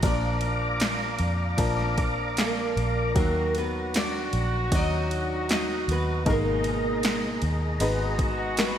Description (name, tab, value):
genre	pop ballad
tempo	77 BPM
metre	4/4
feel	straight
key	Eb harmonic minor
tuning	A4 = 440 Hz
part	nylon-string guitar	melody	0.0-8.8 s	Bb3 to Eb5	-30 LUFS	right 1 dB	lush chorus
part	warm upright piano	accompaniment	0.0-8.8 s	Ab2 to Cb5	-32 LUFS	left 2 dB	lush chorus
part	tonewheel organ	sustained chords	0.0-8.8 s	Ab4 to D6	-32 LUFS	equal	chorus vibrato, slow rotary speaker
part	vintage muted fingered electric bass	bass	0.0-8.8 s	Ab1 to F2	-29 LUFS	equal	none
part	deep house drum kit	drums	0.0-8.8 s	kick drum, ride cymbal, snare drum	-28 LUFS	equal	overdrive, gated reverb
part	mellow French horn section	second line	3.1-8.8 s	Eb4 to Gb4	-33 LUFS	right 2 dB	digital delay
room	moderate lush hall reverb, RT60 3.2 s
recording	bright 1980s-style digital production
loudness	-23 LUFS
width	side -10 dB against mid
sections	0.0-8.8 A section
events	none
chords	0.0 Bb; 3.2 Ebm; 6.3 Abmadd9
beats	| 0.03 0.81 1.59 2.37 | 3.16 3.94 4.72 5.50 | 6.26 7.04 7.80 8.57